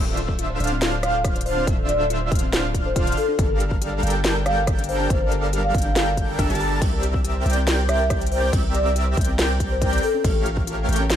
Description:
future bass; 140 BPM; 4/4; half-time; D minor; A4 = 440 Hz
airy dreamy lead; arpeggios; 0.0-11.2 s; E6 to A6; -32 LUFS; equal; chorus, sidechain pumping
supersaw chords; riff; 0.0-11.2 s; D3 to A5; -27 LUFS; right 1 dB; sidechain pumping
long sustained 808-style bass; bass; 0.0-11.2 s; D1 to C2; -24 LUFS; equal; sidechain pumping
thumb-piano-like synth pluck; arpeggios; 0.1-11.1 s; C4 to G5; -34 LUFS; left 4 dB; chorus, cassette tape, sidechain pumping, ping-pong delay
trap drum kit; drums; 0.2-11.2 s; crash cymbal, hi-hat, rim click, snare drum; -27 LUFS; equal; studio reverb
electronic kick drum; drums; 0.3-10.7 s; -24 LUFS; equal; studio reverb
vibraphone with soft mallets; melody; 1.0-10.4 s; A4 to F5; -25 LUFS; left 1 dB; sidechain pumping, ping-pong delay
little or no reverb; -19 LUFS; side -10 dB against mid
0.0-11.2 A section
0.0 Dm7; 3.2 Gm7; 6.8 C7; 10.0 A7b9b13
0.39 0.82 1.25 | 1.67 2.10 2.53 2.96 | 3.39 3.82 4.25 4.67 | 5.10 5.53 5.96 6.39 | 6.82 7.25 7.67 8.10 | 8.53 8.96 9.39 9.82 | 10.24 10.67 11.10

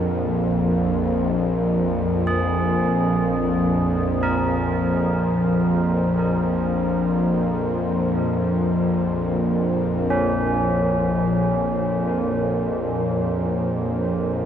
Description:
dark ambient drone; free time; Bb minor; A4 = 441 Hz
sweeping resonant pad; sustained chords; 0.0-14.5 s; Bb2 to C5; -27 LUFS; equal; lush chorus
bowed-like drone; drone; 0.0-14.5 s; Bb1 to F2; -20 LUFS; equal; built-in reverb
tubular bells; arpeggios; 2.3-14.5 s; Db4 to Bb4; -28 LUFS; right 2 dB; diffuse ambient delay
wet huge ambient reverb, RT60 8.4 s; -19 LUFS; side -9 dB against mid
0.0-14.5 A section
fade-in on analog synth pad 0.0-14.5; fade-in on tubular bells 0.0-14.5
0.0 Bb5
free time

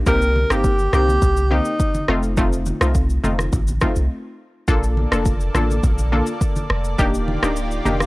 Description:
afrobeats; 104 BPM; 4/4; straight; Bb major; A4 = 440 Hz
punchy sub bass; bass; 0.0-8.1 s; D1 to C2; -20 LUFS; equal
warm alto saxophone; melody; 0.1-2.1 s; Eb4 to Bb4; -21 LUFS; equal; tape echo
analog pluck; accompaniment; 0.1-8.1 s; A3 to A4; -23 LUFS; left 1 dB; chorus
afro-pop drum kit; drums; 0.1-8.1 s; kick drum, rim click, shaker; -21 LUFS; equal
congas; percussion; 0.1-8.1 s; -29 LUFS; right 1 dB
lush unison pad; sustained chords; 4.7-8.1 s; Eb3 to D5; -29 LUFS; equal; chorus, sidechain pumping
little or no reverb; dry, gritty hardware recording; -17 LUFS; side -21 dB against mid
0.0-4.7 A section; 4.7-8.1 B section
break 4.1-4.7
0.1 Cm7; 2.1 F7; 4.7 Bbmaj7; 7.0 Ebmaj7
| 0.07 0.64 1.22 1.80 | 2.37 2.95 3.53 4.10 | 4.68 5.26 5.83 6.41 | 6.99 7.57

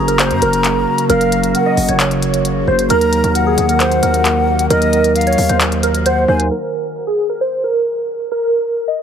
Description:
hip hop, trap; 133 BPM; 4/4; half-time; A4 = 441 Hz
glassy digital keys; melody; 0.0-9.0 s; Ab4 to Eb5; -16 LUFS; right 1 dB; chorus
breathy hollow jazz flute; second line; 0.0-6.5 s; Eb5 to Bb5; -20 LUFS; left 5 dB; ping-pong delay
bell-like tine electric piano; accompaniment; 0.0-6.5 s; Gb3 to Bb4; -20 LUFS; right 5 dB; lush chorus
warbly tape-like pad; sustained chords; 0.0-6.5 s; Db3 to Gb4; -22 LUFS; equal; chorus, built-in reverb
distorted 808-style bass; bass; 0.0-6.5 s; Gb1 to Gb2; -20 LUFS; equal; distortion
trap drum kit; drums; 0.1-9.0 s; handclaps, hi-hat; -20 LUFS; left 1 dB
light reverb; heavily compressed radio sound, multiband compression, low-pass filter; -12 LUFS; side -8 dB against mid
0.0-6.5 A section; 6.5-9.0 B section
filter sweep 6.5-9.0
0.0 Gb; 2.9 Ebm; 6.5 N.C.
0.19 0.65 | 1.10 1.55 2.00 2.45 | 2.90 3.35 3.80 4.25 | 4.71 5.16 5.61 6.06 | 6.51 6.96 7.41 7.86 | 8.31 8.77

